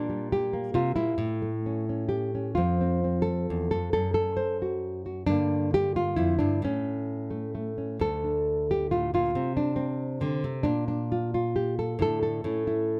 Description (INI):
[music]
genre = folk, solo fingerstyle acoustic guitar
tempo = 134 BPM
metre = 3/4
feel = rubato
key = D minor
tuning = A4 = 443 Hz
[part]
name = nylon-string guitar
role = solo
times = 0.0-13.0 s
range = D2 to C5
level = -28 LUFS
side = equal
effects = none
[sound]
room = light reverb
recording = close, detailed microphones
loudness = -28 LUFS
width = mono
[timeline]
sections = 0.0-8.0 A section; 8.0-13.0 B section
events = none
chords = 0.0 Gm/Bb; 1.2 A; 2.6 F; 3.9 N.C.; 5.3 Gm; 6.6 A; 8.0 D5; 9.3 Csus24; 10.7 N.C.; 12.0 Asus4; 12.4 A